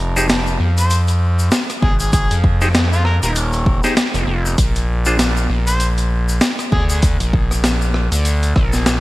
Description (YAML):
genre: glitch hop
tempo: 98 BPM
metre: 4/4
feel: swing 58% on 16ths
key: F dorian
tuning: A4 = 440 Hz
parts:
  - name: gritty driven synth bass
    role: bass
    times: 0.0-9.0 s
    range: Eb1 to F2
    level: -16 LUFS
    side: equal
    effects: tube saturation
  - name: clav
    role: stabs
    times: 0.2-5.2 s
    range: D4 to C5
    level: -22 LUFS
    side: equal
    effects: sidechain pumping, ping-pong delay
  - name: tube shaker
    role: percussion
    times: 0.2-9.0 s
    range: none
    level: -29 LUFS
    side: left 3 dB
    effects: none
  - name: boom bap sampler-style drum kit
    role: drums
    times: 0.3-9.0 s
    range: hi-hat, rim click, snare drum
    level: -20 LUFS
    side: equal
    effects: gated reverb
  - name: warm harmonica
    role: melody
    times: 0.8-7.0 s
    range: F4 to C5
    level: -26 LUFS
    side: equal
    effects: vintage 12-bit sampler grit, ping-pong delay
  - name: electronic kick drum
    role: drums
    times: 1.8-8.7 s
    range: none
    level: -16 LUFS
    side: equal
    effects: none
room: little or no reverb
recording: bright 1980s-style digital production, vinyl crackle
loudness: -14 LUFS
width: side -18 dB against mid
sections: 0.0-9.0 A section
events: none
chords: 0.0 Fm7; 4.6 Bb